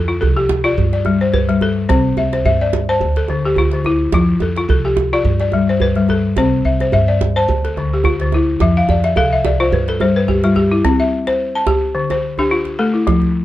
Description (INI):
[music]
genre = west african traditional, West African string and xylophone music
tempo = 107 BPM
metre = 4/4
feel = swing 55% on 16ths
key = C major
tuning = A4 = 439 Hz
[part]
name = balafon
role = arpeggios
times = 0.0-13.3 s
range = D3 to A5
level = -15 LUFS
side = left 2 dB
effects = none
[part]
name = upright bass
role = bass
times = 0.0-10.8 s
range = C2 to G2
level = -19 LUFS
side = right 1 dB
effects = none
[part]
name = djembe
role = percussion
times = 0.2-13.3 s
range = none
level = -20 LUFS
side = right 4 dB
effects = none
[sound]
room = light reverb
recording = dark, warm production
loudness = -13 LUFS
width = side -14 dB against mid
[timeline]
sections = 0.0-10.8 A section; 10.8-13.4 B section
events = balafon fill 8.6-10.8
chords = 0.0 F; 0.8 G; 1.9 C; 3.0 Dm; 4.1 F; 5.2 G; 6.4 C; 7.5 Dm; 8.6 F; 9.7 G9; 10.8 C; 12.0 Dm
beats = 0.22 0.77 1.33 | 1.89 2.45 3.01 3.57 | 4.13 4.69 5.25 5.81 | 6.37 6.93 7.49 8.05 | 8.61 9.16 9.72 10.28 | 10.84 11.39 11.95 12.51 | 13.06